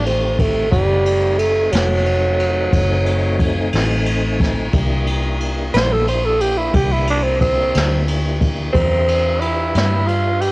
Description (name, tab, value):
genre	slow blues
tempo	60 BPM (dotted quarters)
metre	12/8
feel	straight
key	C mixolydian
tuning	A4 = 440 Hz
part	growling tenor saxophone	second line	0.0-10.5 s	F#3 to C5	-18 LUFS	right 1 dB	cassette tape, tape echo
part	tonewheel organ	sustained chords	0.0-10.5 s	Eb3 to Ab5	-26 LUFS	left 1 dB	slow rotary speaker, chorus vibrato, cassette tape
part	vintage muted fingered electric bass	bass	0.0-10.5 s	F1 to G2	-20 LUFS	equal	none
part	jazz brush drum kit	drums	0.1-10.5 s	kick drum, ride cymbal, snare drum	-20 LUFS	equal	cassette tape
room	little or no reverb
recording	home recording on cassette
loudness	-14 LUFS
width	side -23 dB against mid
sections	0.0-10.5 A section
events	tenor saxophone solo 0.0-10.5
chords	0.0 F7 (rootless); 0.7 F#dim7; 4.7 C7; 8.7 Em7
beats	| 0.73 1.73 2.73 3.73 | 4.74 5.74 6.74 7.75 | 8.75 9.75